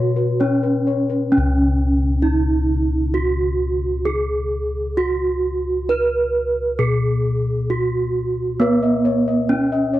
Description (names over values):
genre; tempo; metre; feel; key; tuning
Javanese gamelan; 66 BPM; 4/4; straight; C# slendro; A4 = 440 Hz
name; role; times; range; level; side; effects
gamelan-type bronze metallophone; melody; 0.0-10.0 s; B3-40c to B4-40c; -19 LUFS; right 2 dB; none
gamelan-type bossed gongs; arpeggios; 0.0-1.4, 8.6-10.0 s; B4-40c to D#5+40c; -25 LUFS; left 9 dB; none
gamelan-type bossed gongs; bass; 0.0-10.0 s; C#2 to B4-40c; -22 LUFS; left 1 dB; none
room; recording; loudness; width
little or no reverb; dry, close 1970s-style studio recording; -17 LUFS; side -14 dB against mid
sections
0.0-1.3 A section; 1.3-10.0 B section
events
none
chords
none